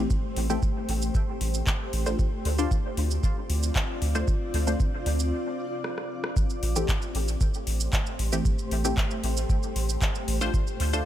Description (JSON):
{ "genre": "dub techno", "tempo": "115 BPM", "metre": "4/4", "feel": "straight", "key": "A minor", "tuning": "A4 = 440 Hz", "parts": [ { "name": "granular cloud pad", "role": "sustained chords", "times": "0.0-11.1 s", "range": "A3 to D5", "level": "-34 LUFS", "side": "left 1 dB", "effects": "built-in reverb, sidechain pumping" }, { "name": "filtered dub chord stab", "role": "stabs", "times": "0.0-11.1 s", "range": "E3 to C5", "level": "-32 LUFS", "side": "left 2 dB", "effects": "chorus, phaser, sidechain pumping, dub echo" }, { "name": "soft dub sub bass", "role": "bass", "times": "0.0-11.0 s", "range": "A1 to D2", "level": "-27 LUFS", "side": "equal", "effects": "tube saturation, sidechain pumping" }, { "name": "booming analog drum machine", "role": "drums", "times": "0.1-11.0 s", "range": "handclaps, hi-hat, rim click, shaker", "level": "-33 LUFS", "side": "equal", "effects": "none" }, { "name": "electronic kick drum", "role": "drums", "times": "0.1-10.6 s", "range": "none", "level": "-26 LUFS", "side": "equal", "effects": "none" }, { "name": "wavetable chord stab", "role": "riff", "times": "0.5-2.8, 6.8-11.1 s", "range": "A4 to C6", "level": "-42 LUFS", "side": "right 4 dB", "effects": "sidechain pumping, dub echo" } ], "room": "little or no reverb", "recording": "none", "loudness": "-24 LUFS", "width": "side -12 dB against mid", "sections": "0.0-6.4 A section; 6.4-11.1 A section", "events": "filter sweep on synth stab 0.0-6.4; break 5.3-6.4; drum fill 5.8-6.4", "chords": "0.0 Am7; 2.2 Dm7; 6.4 Am7; 10.5 Dm7" }